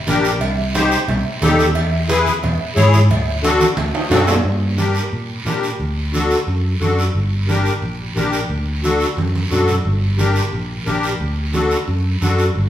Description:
latin, cumbia; 178 BPM; 4/4; straight; G harmonic minor; A4 = 440 Hz
musette accordion; accompaniment; 0.1-12.5 s; D4 to C#5; -19 LUFS; left 2 dB
fingered electric bass; bass; 0.1-12.7 s; G1 to Bb2; -19 LUFS; equal
congas; percussion; 0.1-12.7 s; -26 LUFS; right 3 dB
cowbell and timbales; percussion; 0.1-4.4 s; -24 LUFS; right 2 dB
guiro; percussion; 0.1-12.7 s; -28 LUFS; right 4 dB
wet large studio reverb, RT60 1.2 s; band playing live in one room; -15 LUFS; side -11 dB against mid
0.0-4.4 A section; 4.4-12.7 B section
drum fill 3.6-4.4, 9.2-9.9
0.4 Cm; 1.8 E; 3.1 D; 4.4 Gm; 5.8 D; 7.2 Gm; 8.5 D; 9.9 Gm; 11.2 D

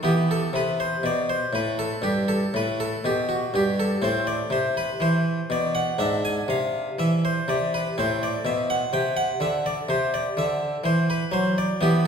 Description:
classical, baroque-style suite movement for harpsichord; 61 BPM; 4/4; rubato; A4 = 441 Hz
harpsichord; solo; 0.0-12.1 s; G2 to G#5; -22 LUFS; equal
wet recital hall reverb, RT60 1.6 s; heard from further back in the room; -22 LUFS; side -6 dB against mid
0.0-12.1 A section
0.0 Em (rootless); 4.0 Am; 6.0 E7/G#; 8.0 Am (rootless)

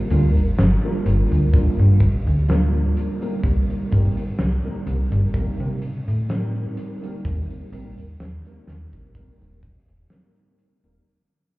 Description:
vaporwave; 63 BPM; 4/4; swing 54% on 16ths; A4 = 440 Hz
mellow tine electric piano; accompaniment; 0.0-11.0 s; G3 to Bb4; -27 LUFS; right 1 dB; medium stereo tremolo, lush chorus, vintage 12-bit sampler grit, analog delay
slap-like FM bass; bass; 0.1-11.0 s; Eb1 to C3; -19 LUFS; equal
huge arena drum kit; drums; 0.1-11.0 s; cabasa, hi-hat, snare drum; -28 LUFS; equal
kick drum; drums; 1.5-9.8 s; -24 LUFS; equal
small room ambience; heard muffled through a wall, cassette tape, club reverb, EQ, nothing above 7.5 kHz; -18 LUFS; side -20 dB against mid
0.0-11.1 A section
fade-out 0.9-11.1
0.0 Gm7; 3.4 Cm7; 6.8 Eb6

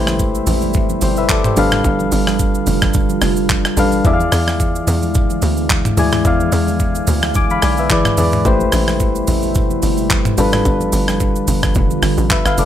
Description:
amapiano; 109 BPM; 4/4; swing 55% on 16ths; A minor; A4 = 441 Hz
soft electric-piano-like synth keys; accompaniment; 0.0-12.7 s; E3 to D6; -18 LUFS; left 3 dB; chorus
deep dark ambient pad; sustained chords; 0.0-12.7 s; B2 to F5; -22 LUFS; right 1 dB; chorus, built-in reverb, sidechain pumping
tight log drum bass; bass; 0.0-12.7 s; F1 to E2; -19 LUFS; equal
breakbeat sampler-style drum kit; drums; 0.1-12.7 s; handclaps, hi-hat, kick drum, rim click, shaker, toms; -18 LUFS; right 1 dB
congas; percussion; 0.1-12.7 s; -27 LUFS; right 3 dB
little or no reverb; -13 LUFS; side -10 dB against mid
0.0-12.7 A section
0.0 Am9; 1.6 G7; 4.0 E7b9; 7.9 E7; 8.5 Am9; 10.4 G7

